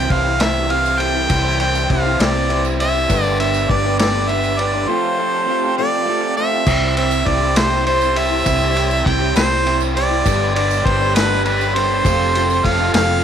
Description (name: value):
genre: folk rock and heartland rock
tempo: 67 BPM (dotted quarters)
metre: 6/8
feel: straight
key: C major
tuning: A4 = 440 Hz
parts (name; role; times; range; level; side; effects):
- clear harmonica; melody; 0.0-13.2 s; B4 to G5; -18 LUFS; right 1 dB; none
- picked old ladder-braced acoustic guitar; accompaniment; 0.0-13.2 s; G2 to G4; -25 LUFS; left 12 dB; none
- dark chamber string section; sustained chords; 0.0-13.2 s; E3 to D5; -27 LUFS; left 2 dB; none
- raw garage guitar; riff; 0.0-13.2 s; G2 to C5; -24 LUFS; right 13 dB; overdrive
- hollow-body short-scale fingered electric bass; bass; 0.0-13.2 s; F1 to C2; -21 LUFS; left 1 dB; none
- bright grand piano; accompaniment; 0.1-13.0 s; G3 to B5; -29 LUFS; right 12 dB; none
- vintage drum kit; drums; 0.1-13.1 s; crash cymbal, kick drum, ride cymbal, snare drum; -21 LUFS; left 1 dB; none
- tambourine; percussion; 0.4-13.2 s; none; -35 LUFS; right 16 dB; none
room: light reverb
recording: 1960s-style stereo with parts hard left and right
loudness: -14 LUFS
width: side -8 dB against mid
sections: 0.0-6.7 A section; 6.7-13.2 A section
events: none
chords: 0.0 C; 3.1 G; 4.9 Fadd9; 6.7 C; 10.2 G; 12.0 Fadd9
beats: 0.40 | 1.30 2.19 | 3.09 3.98 | 4.88 5.77 | 6.67 7.56 | 8.46 9.36 | 10.25 11.15 | 12.04 12.94